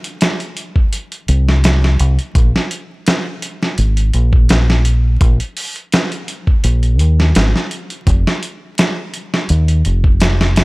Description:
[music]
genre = trip hop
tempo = 84 BPM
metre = 4/4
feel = swing 54% on 16ths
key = F minor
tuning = A4 = 441 Hz
[part]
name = dusty soul sampler-style drum kit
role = drums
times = 0.0-10.6 s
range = hi-hat, kick drum, snare drum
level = -15 LUFS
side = equal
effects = none
[part]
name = deep dub fingered electric bass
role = bass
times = 1.3-10.6 s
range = F1 to Eb2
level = -12 LUFS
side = equal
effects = none
[sound]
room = little or no reverb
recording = dry, gritty hardware recording, vinyl crackle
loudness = -12 LUFS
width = side -24 dB against mid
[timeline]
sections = 0.0-10.6 A section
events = none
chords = none

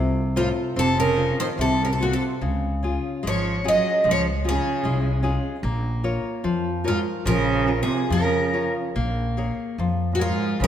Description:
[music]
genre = fado-style ballad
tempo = 74 BPM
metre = 2/4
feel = rubato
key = Bb minor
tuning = A4 = 440 Hz
[part]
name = nylon-string guitar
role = accompaniment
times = 0.0-10.7 s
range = C3 to Db5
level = -26 LUFS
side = left 3 dB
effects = none
[part]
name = upright bass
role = bass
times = 0.0-10.7 s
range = F1 to F2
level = -26 LUFS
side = equal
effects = none
[part]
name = picked twelve-string acoustic guitar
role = melody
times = 0.4-10.7 s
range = F4 to Eb5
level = -24 LUFS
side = equal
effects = none
[part]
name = rich cello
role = second line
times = 0.4-10.7 s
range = Ab2 to Gb3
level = -26 LUFS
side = right 5 dB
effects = none
[sound]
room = moderate scoring stage reverb, RT60 1.7 s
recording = none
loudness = -20 LUFS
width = side -10 dB against mid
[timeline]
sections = 0.0-9.0 A section; 9.0-10.7 A section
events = none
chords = 0.0 F; 2.4 Db; 5.6 Bbm; 9.0 Bbm7

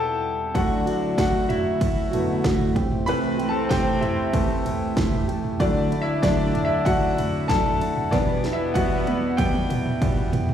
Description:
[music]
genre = piano-driven pop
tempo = 95 BPM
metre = 4/4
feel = straight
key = unclear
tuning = A4 = 440 Hz
[part]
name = clear concert grand piano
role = accompaniment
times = 0.0-10.5 s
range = C3 to B5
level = -25 LUFS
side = left 2 dB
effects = slapback echo
[part]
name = chorused pulse-width pad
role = sustained chords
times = 0.0-10.5 s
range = C2 to E4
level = -33 LUFS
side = left 2 dB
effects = none
[part]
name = mellow French horn section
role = second line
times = 0.5-10.3 s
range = B2 to D4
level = -29 LUFS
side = left 2 dB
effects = slapback echo
[part]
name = fingerpicked steel-string acoustic guitar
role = riff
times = 0.5-10.5 s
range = E2 to G4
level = -27 LUFS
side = right 6 dB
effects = slapback echo
[part]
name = house drum kit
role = drums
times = 0.6-10.5 s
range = kick drum, ride cymbal, snare drum, toms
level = -25 LUFS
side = equal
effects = overdrive
[sound]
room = light reverb, small room ambience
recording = live gig heard through the venue's PA, club reverb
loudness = -20 LUFS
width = side -9 dB against mid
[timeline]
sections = 0.0-10.5 A section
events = grand piano solo 0.0-10.5; drum fill 8.1-10.5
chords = 0.0 Em; 0.5 Dadd9; 2.8 C6; 5.6 Dadd9; 8.1 Em

